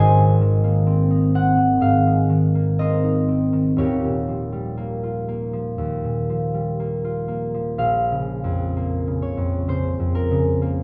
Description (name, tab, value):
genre	classical, solo harp piece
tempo	59-67 BPM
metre	4/4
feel	rubato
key	Bb minor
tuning	A4 = 440 Hz
part	concert harp	solo	0.0-10.8 s	Eb1 to Bb5	-20 LUFS	equal	none
room	wet recital hall reverb, RT60 1.3 s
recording	recorded in a church or concert hall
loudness	-21 LUFS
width	mono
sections	0.0-7.8 A section; 7.8-10.8 B section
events	none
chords	0.0 Abadd9; 3.8 Eb9; 7.8 Bbmadd9